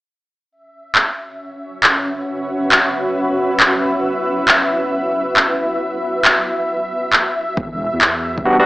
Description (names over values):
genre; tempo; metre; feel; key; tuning
UK garage, two-step garage; 136 BPM; 4/4; swing 65% on 16ths; C# minor; A4 = 443 Hz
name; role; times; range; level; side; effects
soft string machine; sustained chords; 0.8-8.7 s; E5; -26 LUFS; equal; ensemble chorus, vintage 12-bit sampler grit, sidechain pumping
granular cloud pad; texture; 1.5-8.7 s; C#4 to E5; -20 LUFS; equal; built-in reverb, sidechain pumping
electronic handclaps; drums; 1.0-8.1 s; none; -13 LUFS; equal; none
dark detuned saw bass; bass; 7.6-8.5 s; E1 to E2; -26 LUFS; equal; none
electronic kick drum; drums; 7.6-8.4 s; none; -25 LUFS; equal; none
barky tine electric piano; stabs; 8.5-8.7 s; G3 to F#4; -10 LUFS; equal; overdrive, fast tremolo
room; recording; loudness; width
moderate lush hall reverb, RT60 1.9 s, digital ambience; dry, gritty hardware recording, AM radio sound; -14 LUFS; side -19 dB against mid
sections
0.5-8.7 A section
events
filter sweep on string machine 0.5-8.7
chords
0.5 C#m7; 7.4 Em7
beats
| 0.51 0.95 1.40 1.84 | 2.28 2.72 3.16 3.60 | 4.04 4.48 4.92 5.37 | 5.81 6.25 6.69 7.13 | 7.57 8.01 8.45